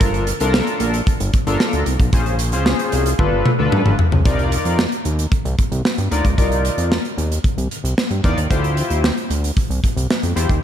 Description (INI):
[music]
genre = early-eighties boogie funk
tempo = 113 BPM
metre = 4/4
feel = straight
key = unclear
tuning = A4 = 437 Hz
[part]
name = chorused polysynth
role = accompaniment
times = 0.0-10.5 s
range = Db4 to D5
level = -22 LUFS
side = left 2 dB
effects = slapback echo
[part]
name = fat analog bass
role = bass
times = 0.0-10.6 s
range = G1 to G2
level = -20 LUFS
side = equal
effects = none
[part]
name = modern studio drum kit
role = drums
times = 0.0-10.6 s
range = hi-hat, kick drum, snare drum, toms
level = -18 LUFS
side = equal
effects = none
[sound]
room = light reverb, small room ambience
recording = none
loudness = -16 LUFS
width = side -10 dB against mid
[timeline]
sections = 0.0-4.3 A section; 4.3-10.6 B section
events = drum fill 3.2-4.3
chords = 0.0 Gm9; 2.1 Bbm9; 3.2 G7; 4.3 Cm11; 8.5 Dm11